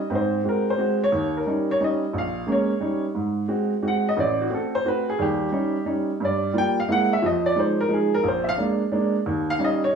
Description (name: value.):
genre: jazz.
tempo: 177 BPM.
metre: 3/4.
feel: swing 65% on 8ths.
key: Eb major.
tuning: A4 = 440 Hz.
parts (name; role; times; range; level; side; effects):
warm baby grand piano; solo; 0.0-10.0 s; A1 to G5; -21 LUFS; right 1 dB; none.
room: moderate studio reverb, RT60 0.8 s.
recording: band playing live in one room, studio reverb.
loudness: -21 LUFS.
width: side -6 dB against mid.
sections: 0.0-10.0 A section.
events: grand piano solo 0.0-10.0.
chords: 0.1 Ab7; 1.1 Eb7; 2.1 Bbm7; 2.8 Eb7; 3.2 Ab7; 4.2 Am69; 5.2 Eb7; 6.2 Gm7; 6.9 Caug7; 7.2 Fm7; 8.2 Bb7; 9.3 Eb7.